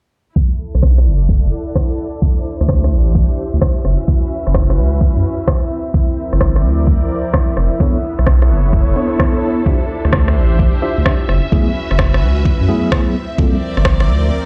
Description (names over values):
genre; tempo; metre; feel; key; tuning
UK garage, two-step garage; 129 BPM; 4/4; swing 66% on 16ths; unclear; A4 = 442 Hz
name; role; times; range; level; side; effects
airy breathy pad; sustained chords; 0.7-14.5 s; E4 to E5; -29 LUFS; equal; chorus, sidechain pumping
electronic kick drum; drums; 0.4-14.0 s; none; -16 LUFS; equal; overdrive
rich studio string section; texture; 0.4-14.5 s; F3 to F#5; -27 LUFS; equal; sidechain pumping
saturated sub bass; bass; 0.7-14.3 s; F1 to F#2; -16 LUFS; equal; none
electronic rim click; drums; 0.7-14.1 s; none; -22 LUFS; equal; overdrive
mellow tine electric piano; stabs; 7.8-13.6 s; F#3 to E5; -22 LUFS; equal; digital delay
room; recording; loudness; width
little or no reverb; played on a big sound system in a bare room, large studio reverb, low-pass filter; -15 LUFS; mono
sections
0.4-14.5 A section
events
filter sweep on sub bass 0.4-14.5; filter sweep 0.4-14.5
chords
0.4 Bm7; 2.2 D9sus4; 3.8 F#7sus4; 5.7 Gm7; 7.8 Bm11; 9.7 Dm11; 11.3 F#m11; 13.2 Gm11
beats
| 0.36 0.82 1.29 1.75 | 2.22 2.69 3.15 3.62 | 4.08 4.55 5.01 5.48 | 5.94 6.41 6.87 7.34 | 7.80 8.27 8.73 9.20 | 9.66 10.13 10.59 11.06 | 11.52 11.99 12.45 12.92 | 13.38 13.85 14.31